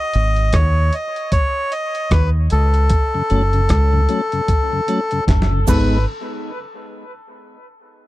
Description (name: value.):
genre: dub reggae.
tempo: 76 BPM.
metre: 4/4.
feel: swing 59% on 16ths.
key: G# phrygian.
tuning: A4 = 443 Hz.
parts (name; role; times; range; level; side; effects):
melodica; melody; 0.0-6.0 s; A4 to D#5; -21 LUFS; left 1 dB; dub echo.
dusty soul sampler-style drum kit; drums; 0.1-5.9 s; crash cymbal, hi-hat, kick drum, rim click, snare drum; -19 LUFS; equal; none.
deep dub fingered electric bass; bass; 0.2-6.0 s; F#1 to D#2; -15 LUFS; equal; none.
mellow tonewheel organ; accompaniment; 3.1-6.0 s; F#2 to D#4; -24 LUFS; left 2 dB; slow rotary speaker, dub echo.
electric guitar with an envelope filter; accompaniment; 5.7-5.9 s; B3 to B4; -28 LUFS; right 7 dB; dub echo.
cabasa; percussion; 5.7-6.0 s; none; -28 LUFS; right 13 dB; none.
room: little or no reverb.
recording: dry, close 1970s-style studio recording.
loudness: -15 LUFS.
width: side -17 dB against mid.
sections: 0.0-6.1 A section; 6.1-8.1 B section.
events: break 0.0-6.1; drum fill 5.3-6.1.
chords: 0.0 G#5; 2.9 F#m; 5.7 G#m; 6.1 N.C..